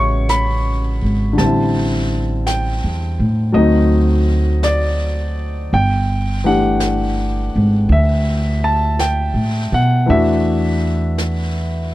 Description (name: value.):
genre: jazz ballad.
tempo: 55 BPM.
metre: 4/4.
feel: swing 68% on 8ths.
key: unclear.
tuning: A4 = 440 Hz.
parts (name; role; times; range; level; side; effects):
warm concert grand piano; accompaniment; 0.0-11.9 s; C#3 to C#6; -18 LUFS; left 1 dB; none.
upright bass; bass; 0.0-11.9 s; G1 to B2; -17 LUFS; equal; none.
jazz brush drum kit; drums; 0.3-11.9 s; brushed snare drum, hi-hat, snare drum; -30 LUFS; equal; none.
room: little or no reverb.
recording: dry, close 1970s-style studio recording.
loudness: -14 LUFS.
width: side -16 dB against mid.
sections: 0.0-11.9 A section.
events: none.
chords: 0.0 F#m9; 1.4 Am7; 3.5 D7b9; 5.7 Gsus2; 10.1 E9sus4.